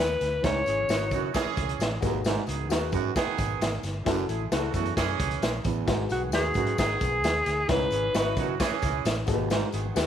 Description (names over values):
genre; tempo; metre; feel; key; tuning
uptempo 1960s-style soul; 132 BPM; 4/4; straight; C# minor; A4 = 441 Hz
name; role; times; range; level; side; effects
warm alto saxophone; melody; 0.0-1.3, 6.1-8.6 s; F#4 to C#5; -27 LUFS; left 1 dB; slapback echo
mellow horn section; second line; 0.0-10.1 s; C#3 to G#4; -33 LUFS; right 12 dB; none
vintage muted fingered electric bass; bass; 0.0-10.1 s; F#1 to C#3; -32 LUFS; equal; none
congas; percussion; 0.0-10.0 s; none; barely audible; none; none
raw garage drum kit; drums; 0.2-10.1 s; hi-hat, kick drum, snare drum; -29 LUFS; equal; none
tambourine; percussion; 0.2-10.1 s; none; -46 LUFS; left 12 dB; none
dark upright piano; accompaniment; 0.4-10.1 s; G#2 to E5; -34 LUFS; left 11 dB; none
breathy baritone saxophone; riff; 0.4-9.7 s; D#2 to G#2; -34 LUFS; right 10 dB; none
room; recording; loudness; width
light reverb, studio reverb; 1960s-style stereo with parts hard left and right; -24 LUFS; side -9 dB against mid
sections
0.0-10.1 A section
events
none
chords
0.4 C#m7; 2.0 G#m7; 4.1 F#m7; 5.9 G#m7; 7.7 C#m7; 9.3 G#m7